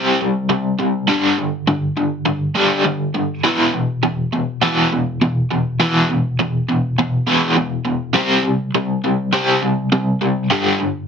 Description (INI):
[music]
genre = rock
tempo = 102 BPM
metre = 4/4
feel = straight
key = E minor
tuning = A4 = 440 Hz
[part]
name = overdriven electric guitar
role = solo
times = 0.0-11.1 s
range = E2 to C4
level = -16 LUFS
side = equal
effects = tremolo
[sound]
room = wet studio ambience, RT60 0.5 s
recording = dense, heavily limited modern master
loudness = -16 LUFS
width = side -6 dB against mid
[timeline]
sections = 0.0-11.1 A section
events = none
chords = 0.0 C5; 1.1 G5; 3.5 E5; 8.2 C5; 10.5 G5